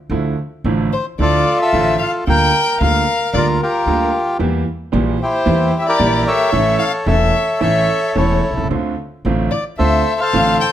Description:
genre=tango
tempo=111 BPM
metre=4/4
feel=rubato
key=D minor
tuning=A4 = 441 Hz
part: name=clear concert grand piano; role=accompaniment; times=0.1-10.6 s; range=E1 to A4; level=-19 LUFS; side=right 3 dB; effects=none
part: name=upright bass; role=bass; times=0.1-10.6 s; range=E1 to E2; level=-21 LUFS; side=equal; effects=none
part: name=bandoneon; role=melody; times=0.9-10.7 s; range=E4 to G5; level=-16 LUFS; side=equal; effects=none
part: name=warm violin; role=second line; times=0.9-10.7 s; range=Bb4 to G5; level=-21 LUFS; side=left 6 dB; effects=none
room=light reverb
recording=none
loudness=-14 LUFS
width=side -11 dB against mid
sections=0.1-10.7 A section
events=none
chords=0.1 Dmadd9; 2.3 Gm7/D; 4.4 Edim; 6.5 A; 8.7 Dm7

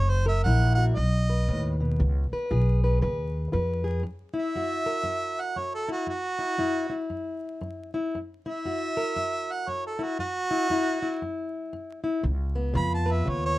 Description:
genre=acoustic country blues, solo or duo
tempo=117 BPM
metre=4/4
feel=swing 61% on 8ths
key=F# mixolydian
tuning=A4 = 435 Hz
part: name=warm harmonica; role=melody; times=0.0-13.6 s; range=F#4 to B5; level=-28 LUFS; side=right 2 dB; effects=none
part: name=fingerpicked plugged-in steel-string acoustic guitar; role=accompaniment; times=0.0-13.6 s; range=F#2 to B4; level=-30 LUFS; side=left 2 dB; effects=none
part: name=upright bass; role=bass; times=0.0-4.0, 12.2-13.6 s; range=F#1 to E#2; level=-24 LUFS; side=equal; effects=none
room=light reverb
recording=rough home demo mix, vinyl crackle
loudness=-25 LUFS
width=side -17 dB against mid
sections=0.0-4.0 A section; 4.0-13.6 B section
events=harmonica solo 4.0-13.6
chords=0.0 F#7; 1.0 B7; 2.0 C#7; 4.0 F#7; 12.2 C#7

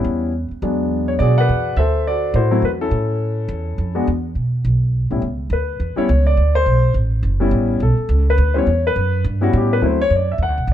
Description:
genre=jazz piano trio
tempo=209 BPM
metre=4/4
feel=swing 60% on 8ths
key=A mixolydian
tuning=A4 = 440 Hz
part: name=warm grand piano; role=melody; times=0.0-10.7 s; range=A2 to F#5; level=-19 LUFS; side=left 2 dB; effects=plate reverb
part: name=upright bass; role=bass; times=0.0-10.7 s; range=F#1 to B2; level=-18 LUFS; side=right 1 dB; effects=none
room=light reverb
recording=dark, warm production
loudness=-15 LUFS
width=side -11 dB against mid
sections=0.0-5.2 A section; 5.2-10.7 B section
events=grand piano solo 5.2-10.7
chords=0.0 A9 (rootless); 0.6 E9; 1.8 D9; 2.9 A; 4.1 E5; 5.2 C#m7; 6.4 D7; 7.5 A9; 9.8 D9

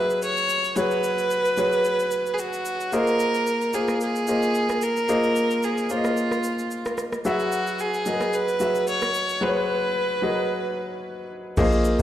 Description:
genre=amapiano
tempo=111 BPM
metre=4/4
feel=swing 55% on 16ths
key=unclear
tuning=A4 = 440 Hz
part: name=rich fiddle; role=melody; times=0.0-11.3 s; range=F4 to Db5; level=-24 LUFS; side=right 1 dB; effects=tape echo
part: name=warm baby grand piano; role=accompaniment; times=0.0-12.0 s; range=Gb3 to Gb5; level=-25 LUFS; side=left 1 dB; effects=none
part: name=smooth R&B drum kit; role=drums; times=0.1-12.0 s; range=crash cymbal, kick drum, rim click, shaker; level=-33 LUFS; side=equal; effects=none
part: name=hollow log drum bass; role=bass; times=11.6-12.0 s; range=Bb1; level=-21 LUFS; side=equal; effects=none
room=light reverb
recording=played on a big sound system in a bare room, large studio reverb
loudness=-21 LUFS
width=side -12 dB against mid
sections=0.0-11.6 A section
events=break 9.4-11.6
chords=0.0 Gb9sus4; 2.9 Bb9sus4; 7.2 Gb9sus4

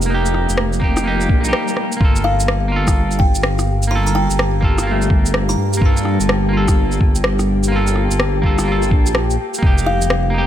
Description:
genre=future garage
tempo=126 BPM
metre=4/4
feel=swing 64% on 16ths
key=G minor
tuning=A4 = 440 Hz
part: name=semi-hollow electric guitar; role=accompaniment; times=0.0-10.5 s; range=A3 to A4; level=-23 LUFS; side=right 2 dB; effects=vintage 12-bit sampler grit, sidechain pumping, ping-pong delay
part: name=deep dark ambient pad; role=sustained chords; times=0.0-10.5 s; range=G3 to Bb5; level=-24 LUFS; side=left 2 dB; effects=chorus, built-in reverb, vintage 12-bit sampler grit, sidechain pumping
part: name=swelling detuned saw bass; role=bass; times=0.0-10.5 s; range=F1 to G2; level=-18 LUFS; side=equal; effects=none
part: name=electronic shaker and rim click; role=drums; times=0.0-10.2 s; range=none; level=-22 LUFS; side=equal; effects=none
part: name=flickering grainy texture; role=texture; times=0.0-10.5 s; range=Bb3 to G4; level=-30 LUFS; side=left 3 dB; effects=none
part: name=electronic kick drum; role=drums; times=0.8-9.7 s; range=none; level=-14 LUFS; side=equal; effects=none
part: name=swell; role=sound effects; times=1.3-2.0 s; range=none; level=-27 LUFS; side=left 4 dB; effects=none
part: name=buzzing kalimba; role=melody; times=2.2-6.0, 9.9-10.1 s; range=F5 to Bb5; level=-23 LUFS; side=left 1 dB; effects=ping-pong delay
room=little or no reverb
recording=none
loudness=-14 LUFS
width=side -11 dB against mid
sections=0.0-10.5 A section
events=swell 1.3-2.0; break 1.5-2.0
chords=0.0 F9sus4; 2.0 Gm9; 9.6 F9sus4

